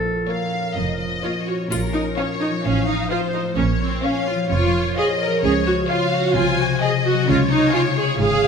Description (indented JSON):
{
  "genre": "cinematic, playful, whimsical film cue",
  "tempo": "130 BPM",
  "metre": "4/4",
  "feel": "straight",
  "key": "Bb minor",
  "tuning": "A4 = 438 Hz",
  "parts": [
    { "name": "mellow clarinet", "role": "second line", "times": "0.0-1.5 s", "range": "A4 to Bb4", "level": "-27 LUFS", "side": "right 2 dB", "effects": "none" },
    { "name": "concert harp", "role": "arpeggios", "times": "0.0-8.5 s", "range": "A2 to F5", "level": "-24 LUFS", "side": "left 5 dB", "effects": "none" },
    { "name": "rich studio cello section", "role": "bass", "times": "0.0-8.5 s", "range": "F2 to Db3", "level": "-27 LUFS", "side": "right 4 dB", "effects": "none" },
    { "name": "warm studio double bass section", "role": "bass", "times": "0.0-8.5 s", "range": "F1 to Db2", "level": "-26 LUFS", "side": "right 3 dB", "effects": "none" },
    { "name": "rich studio violin section", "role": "melody", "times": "0.3-8.5 s", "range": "Bb4 to Ab5", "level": "-26 LUFS", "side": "left 4 dB", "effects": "none" },
    { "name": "rich studio violin section", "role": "second line", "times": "0.3-8.1 s", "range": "C5 to Ab5", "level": "-31 LUFS", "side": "left 4 dB", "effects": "none" },
    { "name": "rich studio viola section", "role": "accompaniment", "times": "0.3-8.5 s", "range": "Bb3 to Bb4", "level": "-21 LUFS", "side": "right 2 dB", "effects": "none" },
    { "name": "triangle", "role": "percussion", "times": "1.7-2.6 s", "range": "none", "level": "-37 LUFS", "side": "left 5 dB", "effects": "none" }
  ],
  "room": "wet scoring stage reverb, RT60 1.6 s",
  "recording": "none",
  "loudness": "-18 LUFS",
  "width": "side -6 dB against mid",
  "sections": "0.0-1.7 A section; 1.7-8.5 B section",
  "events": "none",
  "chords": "0.0 Bbm; 2.7 F/A; 3.6 Bbm; 5.4 Db; 6.4 Ab7/C; 7.3 Db",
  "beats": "0.30 0.77 1.25 | 1.72 2.19 2.65 3.12 | 3.58 4.04 4.50 4.97 | 5.43 5.89 6.36 6.82 | 7.28 7.74 8.19"
}